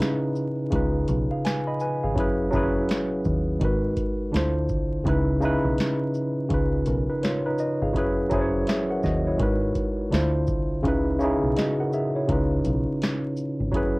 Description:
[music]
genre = lo-fi hip hop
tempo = 83 BPM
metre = 4/4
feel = swing 62% on 16ths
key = unclear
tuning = A4 = 439 Hz
[part]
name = bright tine electric piano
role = accompaniment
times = 0.0-14.0 s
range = C#3 to B5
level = -24 LUFS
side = equal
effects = fast stereo tremolo, low-pass filter, cassette tape
[part]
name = booming analog drum machine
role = drums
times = 0.0-13.9 s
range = finger snaps, hi-hat, kick drum, shaker, snare drum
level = -29 LUFS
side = equal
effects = vintage 12-bit sampler grit, cassette tape
[part]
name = deep dub fingered electric bass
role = bass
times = 0.7-14.0 s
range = F#1 to D#2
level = -28 LUFS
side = equal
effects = none
[sound]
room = light reverb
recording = home recording on cassette, vinyl crackle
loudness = -22 LUFS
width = side -24 dB against mid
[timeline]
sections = 0.0-14.0 A section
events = none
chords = 0.0 C#m9; 0.7 C#7; 2.2 F#9sus4; 3.6 G#m7; 4.3 Dm9; 5.1 C#m9; 6.5 C#7; 8.0 F#9sus4; 9.4 G#m7; 10.1 Dm9; 10.8 C#m9; 12.3 C#7

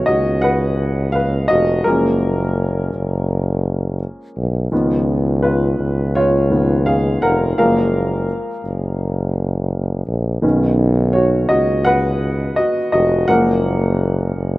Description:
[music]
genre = piano-driven pop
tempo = 84 BPM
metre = 4/4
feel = straight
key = F# major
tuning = A4 = 437 Hz
[part]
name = warm upright piano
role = accompaniment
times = 0.0-14.6 s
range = D#3 to F#5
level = -17 LUFS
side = equal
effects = none
[part]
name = clear tuba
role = bass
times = 0.0-14.6 s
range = E#1 to C#2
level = -18 LUFS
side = equal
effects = none
[sound]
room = light reverb, small room ambience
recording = rough home demo mix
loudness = -15 LUFS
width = side -18 dB against mid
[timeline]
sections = 0.0-14.6 A section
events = upright piano solo 0.0-14.6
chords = 0.0 Badd9; 1.9 F#maj7; 4.7 C#7; 7.6 F#maj7; 10.4 Badd9; 13.3 F#maj7

